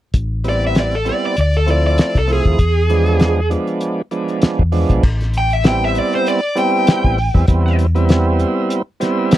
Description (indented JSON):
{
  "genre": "straight-eighth soul blues",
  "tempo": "98 BPM",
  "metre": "4/4",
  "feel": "swing 56% on 16ths",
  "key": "A minor from 5.0 s",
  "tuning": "A4 = 440 Hz",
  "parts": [
    { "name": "hollow-body short-scale fingered electric bass", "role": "bass", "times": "0.1-8.4 s", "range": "A1 to E2", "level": "-16 LUFS", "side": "equal", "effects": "none" },
    { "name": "cloth-damped thuddy drum kit", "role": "drums", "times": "0.1-9.4 s", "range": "crash cymbal, hi-hat, kick drum, snare drum", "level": "-14 LUFS", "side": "left 1 dB", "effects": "none" },
    { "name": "tonewheel organ", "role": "accompaniment", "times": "0.4-9.4 s", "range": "F3 to E4", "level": "-18 LUFS", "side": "right 3 dB", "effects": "slow rotary speaker, overdrive" },
    { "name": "dark smooth lead guitar", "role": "melody", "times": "0.5-7.8 s", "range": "G#4 to G5", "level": "-18 LUFS", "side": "equal", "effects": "overdrive" }
  ],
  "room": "little or no reverb",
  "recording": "dry, close 1970s-style studio recording",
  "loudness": "-14 LUFS",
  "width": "side -13 dB against mid",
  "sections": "0.1-5.0 A section; 5.0-9.4 B section",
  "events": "lead electric guitar solo 5.0-9.4",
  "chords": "0.1 Am7; 1.4 Dm7; 2.6 E7b9; 5.0 Am9"
}